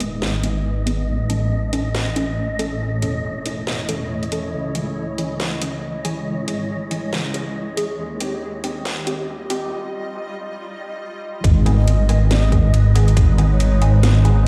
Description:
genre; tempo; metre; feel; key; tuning
deep dubstep; 139 BPM; 4/4; swing 58% on 16ths, half-time; G# phrygian; A4 = 439 Hz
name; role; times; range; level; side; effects
granular cloud pad; sustained chords; 0.0-14.5 s; G3 to D#5; -32 LUFS; equal; built-in reverb
filtered dub chord stab; stabs; 0.0-14.4 s; D#3 to A4; -30 LUFS; equal; phaser, analog chorus, cassette tape, dub echo
dark detuned saw bass; bass; 0.0-14.4 s; D#1 to D#2; -21 LUFS; equal; none
garage drum kit; drums; 0.0-14.3 s; hi-hat, snare drum; -30 LUFS; equal; high-pass filter on hats, high-pass filter on snare
wind-like tuned noise texture; texture; 0.0-14.5 s; D#5; -35 LUFS; equal; built-in reverb
electronic kick drum; drums; 11.4-13.3 s; none; -18 LUFS; equal; none
breathy long shakuhachi; melody; 11.8-14.1 s; C#5 to D#5; -32 LUFS; equal; vintage 12-bit sampler grit, dub echo
room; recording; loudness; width
light reverb, digital ambience; played on a big sound system in a bare room, large studio reverb, high-pass filter; -20 LUFS; mono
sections
0.0-11.4 A section; 11.4-14.5 B section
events
build-up 0.0-11.4; filter sweep on synth stab 0.0-11.4; filter sweep on ambient pad 0.0-11.4; filter sweep 0.0-11.4; break 9.7-11.4; drop 11.4-14.5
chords
0.0 G#m; 1.1 A; 4.5 C#m; 8.0 D#add9; 11.4 G#m

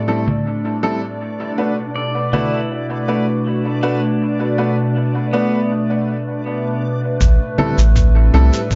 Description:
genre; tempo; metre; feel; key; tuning
ambient dub; 80 BPM; 4/4; straight; unclear; A4 = 440 Hz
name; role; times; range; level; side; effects
warbly tape-like pad; sustained chords; 0.0-8.8 s; A2 to B4; -23 LUFS; equal; chorus, built-in reverb, phaser
pedal steel guitar; arpeggios; 0.0-5.7 s; A3 to D5; -29 LUFS; equal; low-pass filter, analog delay
backwards swelling texture; texture; 0.0-8.8 s; D4 to D5; -32 LUFS; equal; built-in reverb
clear upright piano; stabs; 0.1-8.6 s; G3 to B4; -24 LUFS; equal; dub echo
congas and cabasa; drums; 0.3-2.5, 7.2-8.8 s; none; -26 LUFS; equal; low-pass filter on perc, dub echo
soft dub sub bass; bass; 7.2-8.5 s; A1 to C2; -13 LUFS; equal; none
electronic kick drum; drums; 7.2-8.8 s; none; -19 LUFS; equal; none
room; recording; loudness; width
moderate spring reverb, RT60 1.8 s; echo-heavy mix, nothing above 7.7 kHz; -18 LUFS; mono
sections
0.0-7.2 A section; 7.2-8.8 B section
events
filter sweep on ambient pad 0.0-7.2; filter sweep on pedal steel guitar 0.0-7.2; break 5.7-7.2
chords
0.0 Am7; 1.2 Bm7; 7.2 Am7

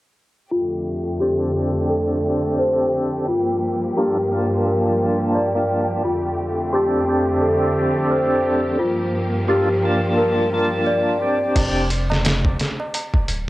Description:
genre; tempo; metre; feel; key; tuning
trip hop; 87 BPM; 4/4; swing 57% on 16ths; unclear; A4 = 440 Hz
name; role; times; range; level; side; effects
clear symphonic string section; sustained chords; 0.5-11.5 s; F2 to G4; -23 LUFS; equal; cassette tape
celesta; arpeggios; 0.5-11.6 s; F4 to D5; -21 LUFS; left 1 dB; low-pass filter, cassette tape, tape echo
percussive tonewheel organ; accompaniment; 1.2-11.9 s; Bb3 to A5; -22 LUFS; equal; slow rotary speaker, tremolo, low-pass filter, cassette tape, tape echo, plate reverb
warm sub bass; bass; 11.6-13.5 s; D1 to F1; -22 LUFS; equal; none
trip hop sampler-style drum kit; drums; 11.6-13.5 s; crash cymbal, hi-hat, kick drum, snare drum; -20 LUFS; equal; vintage 12-bit sampler grit, cassette tape
tabla; percussion; 11.6-13.3 s; none; -30 LUFS; right 2 dB; none
room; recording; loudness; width
moderate studio reverb, RT60 0.6 s; home recording on cassette, low-pass filter; -17 LUFS; side -17 dB against mid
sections
0.5-11.6 A section; 11.6-13.5 B section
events
filter sweep on tonewheel organ 0.5-11.6; filter sweep on celesta 0.5-11.6; filter sweep 0.5-11.6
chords
0.5 F69; 3.3 Gm7; 6.0 F69; 8.8 Gm7; 11.6 Fsus2

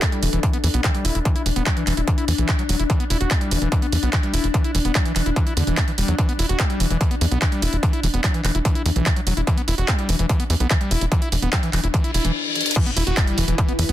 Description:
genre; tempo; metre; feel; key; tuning
psychedelic trance; 146 BPM; 4/4; straight; E minor; A4 = 440 Hz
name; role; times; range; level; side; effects
evolving wavetable pad; sustained chords; 0.0-13.9 s; E3 to E4; -29 LUFS; left 4 dB; chorus, built-in reverb, sidechain pumping
overdriven acid bass; riff; 0.0-13.9 s; D3 to F#4; -27 LUFS; equal; distortion, auto-pan, sidechain pumping, tape echo
electronic kick drum; drums; 0.0-13.7 s; none; -20 LUFS; equal; distortion, overdrive
techno drum kit; drums; 0.0-13.9 s; crash cymbal, handclaps, hi-hat; -26 LUFS; right 2 dB; none
tight sequencer bass; bass; 0.2-13.9 s; E1 to E2; -21 LUFS; equal; none
reverse cymbal and impact; sound effects; 12.1-13.9 s; none; -26 LUFS; left 3 dB; none
airy breathy pad; texture; 12.8-13.9 s; E4 to B5; -31 LUFS; left 2 dB; chorus, sidechain pumping
room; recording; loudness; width
digital ambience; dense, heavily limited modern master; -18 LUFS; side -13 dB against mid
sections
0.0-12.8 A section; 12.8-13.9 B section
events
reverse cymbal 12.1-12.8; drum fill 12.6; drop 12.8-13.9; impact 12.8-13.9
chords
0.0 E5

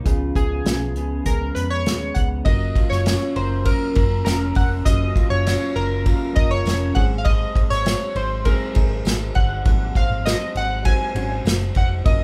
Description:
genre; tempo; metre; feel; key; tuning
indie pop, bedroom pop; 100 BPM; 4/4; straight; Gb lydian; A4 = 441 Hz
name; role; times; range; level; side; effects
electric guitar through a small old amp; accompaniment; 0.0-12.2 s; Ab2 to Bb4; -31 LUFS; equal; vibrato effect
reed electric piano; accompaniment; 0.0-12.2 s; E#3 to Bb4; -34 LUFS; equal; none
vintage muted picked electric bass; bass; 0.1-12.2 s; F1 to E#2; -27 LUFS; equal; none
unplugged drum kit; drums; 0.1-12.2 s; hi-hat, kick drum, ride cymbal, snare drum; -23 LUFS; equal; none
chorused retro synth keys; melody; 0.4-12.2 s; G#4 to Ab5; -28 LUFS; equal; none
tambourine; percussion; 3.1-11.6 s; none; barely audible; none; none
ethereal airy pad; sustained chords; 12.1-12.2 s; none; barely audible; none; none
room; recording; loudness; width
light reverb; band playing live in one room; -20 LUFS; mono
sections
0.0-2.5 A section; 2.5-12.2 B section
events
none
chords
0.1 C#7; 2.5 Gbmaj7; 7.0 Ab7

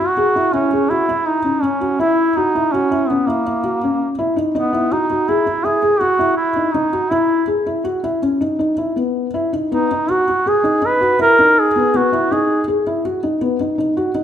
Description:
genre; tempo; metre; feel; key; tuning
contemporary instrumental, contemporary; 163 BPM; 7/4; straight; unclear; A4 = 441 Hz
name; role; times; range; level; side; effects
warm duduk; melody; 0.0-12.7 s; A#3 to B4; -16 LUFS; right 1 dB; none
felt-muted upright piano; arpeggios; 0.0-14.2 s; B3 to G#4; -18 LUFS; left 2 dB; none
room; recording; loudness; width
moderate recital hall reverb, RT60 1.7 s; minimal, uncompressed stereo recording; -14 LUFS; side -9 dB against mid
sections
0.0-14.2 A section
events
none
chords
0.0 F#7(no3); 4.5 Emaj7(no3); 9.7 G#m7

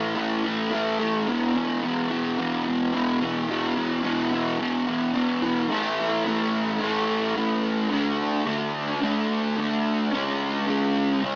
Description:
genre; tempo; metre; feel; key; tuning
rock; 108 BPM; 4/4; straight; unclear; A4 = 442 Hz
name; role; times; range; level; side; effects
fuzz guitar; solo; 0.0-11.4 s; E2 to D4; -22 LUFS; equal; distortion, analog chorus, analog delay
room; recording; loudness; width
moderate huge ambient reverb, RT60 5.1 s; small speaker sound; -22 LUFS; side -28 dB against mid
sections
0.0-5.7 A section; 5.7-11.4 B section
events
none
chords
0.0 A5; 1.3 E5; 5.7 A5; 7.9 D5; 10.1 C#5

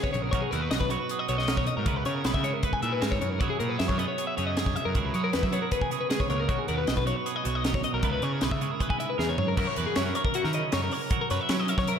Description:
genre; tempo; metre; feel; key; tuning
math rock and midwest emo; 156 BPM; 4/4; straight; unclear; A4 = 440 Hz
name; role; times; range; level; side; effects
twelve-string electric guitar; accompaniment; 0.0-12.0 s; G#2 to B4; -32 LUFS; right 10 dB; slapback echo
twelve-string electric guitar; arpeggios; 0.0-12.0 s; F#4 to G#5; -30 LUFS; left 5 dB; slapback echo
crisp fusion drum kit; drums; 0.0-12.0 s; crash cymbal, hi-hat, kick drum, snare drum, toms; -30 LUFS; equal; none
fuzz picked electric bass; bass; 0.1-11.9 s; A#1 to F#3; -31 LUFS; equal; overdrive
room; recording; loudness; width
moderate lush hall reverb, RT60 1.6 s, small room ambience; big arena sound; -25 LUFS; side -8 dB against mid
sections
0.0-9.6 A section; 9.6-12.0 B section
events
drum fill 9.2-9.6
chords
0.3 Bmaj9; 1.9 C#m7; 3.4 F#9sus4; 6.5 Bmaj9; 8.0 C#m7; 9.6 F#7

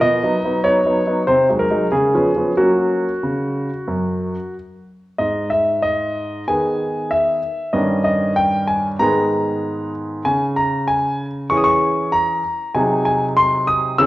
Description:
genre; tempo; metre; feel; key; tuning
classical-period piano sonatina; 95 BPM; 4/4; rubato; F# major, G# minor from 5.2 s; A4 = 440 Hz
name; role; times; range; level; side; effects
bright concert grand piano; solo; 0.0-14.1 s; F#2 to E6; -16 LUFS; equal; none
room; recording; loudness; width
moderate recital hall reverb, RT60 1.5 s; worn, warbling old tape, cassette tape, warbly pitch drift; -16 LUFS; side -16 dB against mid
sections
0.0-5.2 A section; 5.2-14.1 B section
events
none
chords
0.0 B; 1.3 G#7/B#; 1.9 C#7; 2.6 F#; 5.2 G#m; 7.7 D#7/G; 9.0 G#m; 10.3 C#m; 12.7 G#7/B#

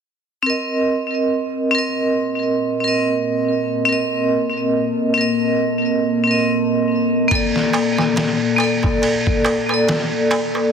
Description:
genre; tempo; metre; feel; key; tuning
trip hop; 70 BPM; 4/4; swing 56% on 16ths; C dorian; A4 = 444 Hz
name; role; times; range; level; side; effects
vibraphone with hard mallets; accompaniment; 0.4-10.7 s; Bb3 to Eb5; -18 LUFS; right 1 dB; tremolo, tape echo
deep dark ambient pad; sustained chords; 2.4-10.7 s; Bb3 to A5; -22 LUFS; left 2 dB; chorus, built-in reverb, vintage 12-bit sampler grit
trip hop sampler-style drum kit; drums; 7.3-10.5 s; kick drum, ride cymbal, snare drum; -21 LUFS; right 1 dB; overdrive
darbuka; percussion; 7.3-10.7 s; none; -25 LUFS; right 2 dB; none
room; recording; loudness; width
light reverb; dense, heavily limited modern master; -16 LUFS; side -6 dB against mid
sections
0.5-10.7 A section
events
filter sweep on ambient pad 0.5-10.7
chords
0.5 Cm7; 7.3 Bbmaj7

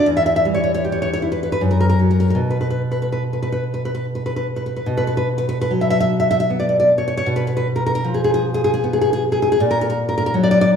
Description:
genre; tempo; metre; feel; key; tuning
romantic piece for solo classical guitar; 69-84 BPM; 3/4; rubato; B minor; A4 = 441 Hz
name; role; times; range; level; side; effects
nylon-string guitar; solo; 0.0-10.8 s; E2 to E5; -16 LUFS; equal; none
room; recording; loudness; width
wet recital hall reverb, RT60 1.6 s; recorded in a church or concert hall; -16 LUFS; side -7 dB against mid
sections
0.0-4.9 A section; 4.9-10.8 B section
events
none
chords
0.1 Em6; 1.6 N.C.; 4.9 B5; 7.3 G#m6/B; 9.6 F#/A#

